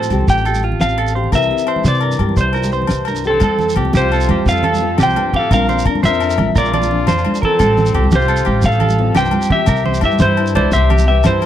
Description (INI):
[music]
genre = highlife guitar band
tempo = 115 BPM (dotted quarters)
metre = 12/8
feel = straight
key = F major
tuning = A4 = 437 Hz
[part]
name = clean electric guitar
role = melody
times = 0.0-11.5 s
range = A4 to G5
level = -18 LUFS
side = equal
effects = spring reverb
[part]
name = nylon-string guitar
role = accompaniment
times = 0.0-11.5 s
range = F2 to G4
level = -23 LUFS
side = left 10 dB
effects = none
[part]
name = clean electric guitar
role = arpeggios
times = 0.0-11.5 s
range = F4 to E5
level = -22 LUFS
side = right 7 dB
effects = tape echo
[part]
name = upright bass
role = bass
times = 0.0-11.4 s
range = A1 to C3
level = -18 LUFS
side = equal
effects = none
[part]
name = congas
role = percussion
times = 0.0-11.4 s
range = none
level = -22 LUFS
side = right 3 dB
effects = none
[part]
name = shekere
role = percussion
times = 0.0-11.5 s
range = none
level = -25 LUFS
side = right 2 dB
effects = none
[part]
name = cloth-damped thuddy drum kit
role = drums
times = 0.1-11.5 s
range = hi-hat, kick drum, ride cymbal, snare drum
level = -16 LUFS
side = equal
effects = none
[part]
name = agogo bells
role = percussion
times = 0.1-11.5 s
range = none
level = -28 LUFS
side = left 24 dB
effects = none
[part]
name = clear trumpet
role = second line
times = 3.3-11.5 s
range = C4 to C5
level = -25 LUFS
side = left 9 dB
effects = none
[sound]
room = little or no reverb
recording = dry, close 1970s-style studio recording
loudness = -12 LUFS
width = side -11 dB against mid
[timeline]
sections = 0.0-3.4 A section; 3.4-11.5 B section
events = none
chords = 0.0 Fadd9/A; 1.3 C; 3.4 Fadd9; 5.5 Bbadd9; 7.6 Fadd9/A; 9.7 C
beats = 0.28 0.81 | 1.33 1.85 2.38 2.90 | 3.42 3.95 4.47 4.99 | 5.51 6.04 6.56 7.08 | 7.60 8.12 8.64 9.17 | 9.69 10.21 10.73 11.25